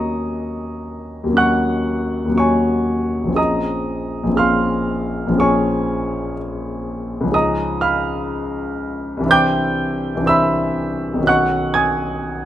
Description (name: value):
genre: classical, impressionist solo piano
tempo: 60 BPM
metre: 4/4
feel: rubato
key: Eb minor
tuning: A4 = 440 Hz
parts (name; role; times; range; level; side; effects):
- warm concert grand piano; solo; 0.0-12.5 s; Bb1 to Ab6; -17 LUFS; equal; none
room: moderate recital hall reverb, RT60 1.5 s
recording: close, detailed microphones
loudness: -17 LUFS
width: side -12 dB against mid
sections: 0.0-12.5 A section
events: none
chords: 0.0 Ebm7; 3.4 Bbm9; 7.3 Dbadd9; 9.3 Cadd9; 11.3 Badd9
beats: 0.34 1.36 2.38 | 3.38 4.39 5.39 6.37 | 7.33 8.32 9.29 10.28 | 11.27 12.25